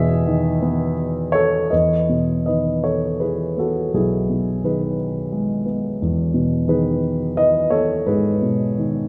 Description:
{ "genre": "classical, lyrical solo piano", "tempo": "80-89 BPM", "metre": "3/4", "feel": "rubato", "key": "E major", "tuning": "A4 = 440 Hz", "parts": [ { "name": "dark concert grand piano", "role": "solo", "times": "0.0-9.1 s", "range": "B1 to E5", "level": "-20 LUFS", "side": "equal", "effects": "none" } ], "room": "wet recital hall reverb, RT60 1.6 s", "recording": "recorded in a church or concert hall", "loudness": "-20 LUFS", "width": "mono", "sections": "0.0-1.7 A section; 1.7-9.1 B section", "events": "none", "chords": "0.0 Emaj7" }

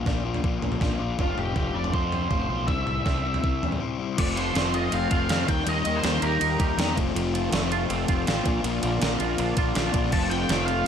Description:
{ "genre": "indie rock", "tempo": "161 BPM", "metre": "4/4", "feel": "straight", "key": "F mixolydian from 4.2 s", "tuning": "A4 = 441 Hz", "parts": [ { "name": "crunchy overdriven guitar", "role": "riff", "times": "0.0-10.9 s", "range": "F2 to F4", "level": "-28 LUFS", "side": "left 9 dB", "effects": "none" }, { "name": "fuzz fingered electric bass", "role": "bass", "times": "0.0-10.8 s", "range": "F1 to F2", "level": "-29 LUFS", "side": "right 1 dB", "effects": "overdrive" }, { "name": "gated 80s digital drum machine", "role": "drums", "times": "0.1-10.8 s", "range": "crash cymbal, kick drum, ride cymbal, snare drum, toms", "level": "-27 LUFS", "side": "right 1 dB", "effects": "gated reverb, gated reverb snare" }, { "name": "octave-fuzz lead guitar", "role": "melody", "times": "1.2-6.9, 10.1-10.9 s", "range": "F4 to A5", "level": "-29 LUFS", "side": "equal", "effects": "distortion, tape echo" }, { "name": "string machine, violins", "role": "sustained chords", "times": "4.2-10.9 s", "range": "F4 to Bb5", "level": "-36 LUFS", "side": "right 2 dB", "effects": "none" }, { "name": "twangy electric guitar", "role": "riff", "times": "4.2-10.9 s", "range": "F2 to G4", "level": "-31 LUFS", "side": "right 12 dB", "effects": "ensemble chorus, tape echo" } ], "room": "light reverb", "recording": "none", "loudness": "-22 LUFS", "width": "side -8 dB against mid", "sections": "0.0-4.2 A section; 4.2-10.9 B section", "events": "break 3.8-4.2", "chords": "0.0 Bb; 1.2 Fadd9; 2.7 C; 4.2 F; 5.5 Eb; 7.0 F; 8.5 Bb; 10.1 F" }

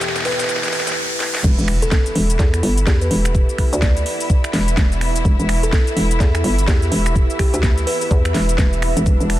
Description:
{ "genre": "bass house", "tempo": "126 BPM", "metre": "4/4", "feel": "swing 60% on 16ths", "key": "E minor", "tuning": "A4 = 440 Hz", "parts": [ { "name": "rich studio string section", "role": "sustained chords", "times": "0.0-9.4 s", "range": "E2 to G4", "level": "-29 LUFS", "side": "left 3 dB", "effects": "sidechain pumping" }, { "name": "garage drum kit", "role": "drums", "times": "0.0-9.4 s", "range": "cabasa, crash cymbal, finger snaps, hi-hat, snare drum", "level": "-24 LUFS", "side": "equal", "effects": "high-pass filter on snare, small room ambience, high-pass filter on hats, high-pass filter on perc, high-pass filter on cymbals" }, { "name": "riser and impact", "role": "sound effects", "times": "0.0-3.3 s", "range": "none", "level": "-26 LUFS", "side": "equal", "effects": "none" }, { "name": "deep dark ambient pad", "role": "texture", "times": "0.0-9.4 s", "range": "E4 to E5", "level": "-29 LUFS", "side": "right 3 dB", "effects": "chorus, built-in reverb, sidechain pumping" }, { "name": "kalimba", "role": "melody", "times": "0.3-8.1 s", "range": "G4 to D5", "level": "-26 LUFS", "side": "equal", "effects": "ping-pong delay" }, { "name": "hollow knocking FM bass", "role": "bass", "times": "1.4-9.4 s", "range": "E1 to E2", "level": "-18 LUFS", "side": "equal", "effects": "tube saturation, sidechain pumping" }, { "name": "electronic kick drum", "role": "drums", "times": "1.4-9.2 s", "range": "none", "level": "-16 LUFS", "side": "equal", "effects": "small room ambience" } ], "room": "little or no reverb", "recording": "dense, heavily limited modern master", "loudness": "-15 LUFS", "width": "side -14 dB against mid", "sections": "0.0-1.4 A section; 1.4-9.4 B section", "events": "build-up 0.0-1.4; drum fill 0.0-1.0, 1.2; riser 0.0-1.4; drop 1.4-9.4; impact 1.4-3.3", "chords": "0.0 E5" }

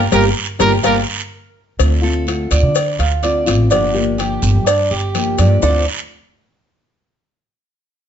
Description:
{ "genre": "latin, Cuban son and guajira", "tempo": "125 BPM", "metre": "4/4", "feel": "straight", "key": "D minor", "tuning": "A4 = 440 Hz", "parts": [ { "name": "rich studio violin section", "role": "second line", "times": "0.0-1.0 s", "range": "F4 to Bb4", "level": "-23 LUFS", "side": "left 1 dB", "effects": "none" }, { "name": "nylon-string guitar", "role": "accompaniment", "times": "0.0-5.8 s", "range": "D3 to G4", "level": "-20 LUFS", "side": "left 5 dB", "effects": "none" }, { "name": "Cuban tres", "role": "arpeggios", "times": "0.0-5.9 s", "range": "D4 to D5", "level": "-18 LUFS", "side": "right 4 dB", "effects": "none" }, { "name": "upright bass", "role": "bass", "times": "0.0-5.8 s", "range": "G1 to D3", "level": "-17 LUFS", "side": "equal", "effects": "none" }, { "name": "warm trumpet", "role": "melody", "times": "0.1-1.0 s", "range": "Bb4", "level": "-20 LUFS", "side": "right 2 dB", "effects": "plate reverb" }, { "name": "cowbell and bongos", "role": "percussion", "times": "0.1-5.7 s", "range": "none", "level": "-22 LUFS", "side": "left 10 dB", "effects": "none" }, { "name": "guiro", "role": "percussion", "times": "0.1-5.7 s", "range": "none", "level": "-27 LUFS", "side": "right 6 dB", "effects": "none" }, { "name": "maracas", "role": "percussion", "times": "0.1-5.7 s", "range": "none", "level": "-29 LUFS", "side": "left 5 dB", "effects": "none" } ], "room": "light reverb", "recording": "nothing above 7.7 kHz", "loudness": "-13 LUFS", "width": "side -9 dB against mid", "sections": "0.0-1.8 A section; 1.8-5.6 B section; 5.6-7.5 C section", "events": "band accent 0.0-1.8; drum fill 0.8-1.8", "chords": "0.0 Gm7; 1.8 Dm7; 3.7 Gm7; 5.6 D7(no3)" }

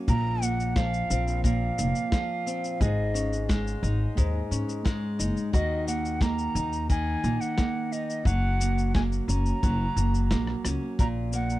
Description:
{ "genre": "folktronica", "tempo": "88 BPM", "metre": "4/4", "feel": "straight", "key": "Gb lydian", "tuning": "A4 = 440 Hz", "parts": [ { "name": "nylon-string guitar", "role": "arpeggios", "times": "0.0-11.6 s", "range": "Ab2 to Ab4", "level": "-30 LUFS", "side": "right 1 dB", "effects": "tape echo" }, { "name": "mellow hollow jazz flute", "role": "melody", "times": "0.1-11.6 s", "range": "Eb5 to Bb5", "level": "-32 LUFS", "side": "equal", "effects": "tape echo" }, { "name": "upright bass", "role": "bass", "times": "0.1-11.6 s", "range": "F1 to Ab2", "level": "-27 LUFS", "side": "equal", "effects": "none" }, { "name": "electronic cabasa, snare drum and rim click", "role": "drums", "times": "0.1-11.6 s", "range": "none", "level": "-33 LUFS", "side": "left 1 dB", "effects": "none" }, { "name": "kick drum", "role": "drums", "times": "0.1-11.1 s", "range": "none", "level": "-25 LUFS", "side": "equal", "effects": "none" } ], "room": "little or no reverb", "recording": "none", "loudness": "-24 LUFS", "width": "side -16 dB against mid", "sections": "0.0-11.6 A section", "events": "break 10.3-11.0; drum fill 10.5-11.0", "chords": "0.1 Bbsus2; 2.8 Absus4; 5.5 Ebm; 8.3 Gb; 11.0 N.C." }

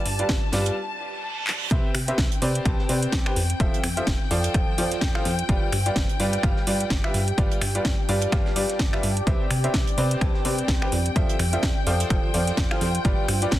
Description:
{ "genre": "piano house", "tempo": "127 BPM", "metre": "4/4", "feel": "swing 57% on 16ths", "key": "G mixolydian", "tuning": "A4 = 440 Hz", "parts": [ { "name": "warm symphonic string section", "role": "sustained chords", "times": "0.0-13.6 s", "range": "G5 to A5", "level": "-33 LUFS", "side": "left 4 dB", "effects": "sidechain pumping" }, { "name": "deep dark ambient pad", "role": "texture", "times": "0.0-13.6 s", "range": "C4 to A5", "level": "-33 LUFS", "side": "equal", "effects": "chorus, built-in reverb, sidechain pumping" }, { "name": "plucky analog bass", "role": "bass", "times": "0.1-13.6 s", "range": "F1 to C3", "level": "-26 LUFS", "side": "equal", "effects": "tube saturation, sidechain pumping" }, { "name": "deep reggae drum kit", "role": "drums", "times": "0.1-13.6 s", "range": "hi-hat, shaker, snare drum", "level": "-41 LUFS", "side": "right 3 dB", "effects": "none" }, { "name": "house drum kit", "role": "drums", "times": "0.1-13.6 s", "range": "finger snaps, handclaps, hi-hat, snare drum", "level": "-29 LUFS", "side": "equal", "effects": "overdrive" }, { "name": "clear upright piano", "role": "riff", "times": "0.2-13.6 s", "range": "F3 to A5", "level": "-28 LUFS", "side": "right 1 dB", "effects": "vintage 12-bit sampler grit, sidechain pumping, tape echo" }, { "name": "electronic kick drum", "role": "drums", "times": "0.3-13.6 s", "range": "none", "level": "-24 LUFS", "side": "equal", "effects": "overdrive" }, { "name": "reverse cymbal", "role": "sound effects", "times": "1.0-1.7 s", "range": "none", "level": "-33 LUFS", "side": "right 8 dB", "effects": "none" } ], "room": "small room ambience", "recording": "dense, heavily limited modern master", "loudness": "-21 LUFS", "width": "side -14 dB against mid", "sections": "0.0-1.7 A section; 1.7-13.6 B section", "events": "break 0.8-1.7; reverse cymbal 1.0-1.7; drum fill 1.5; drop 1.7-13.6", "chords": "0.0 G7; 1.7 Cmaj7; 3.4 Fmaj7; 5.5 G7; 9.3 Cmaj7; 10.9 Fmaj7; 13.0 G7" }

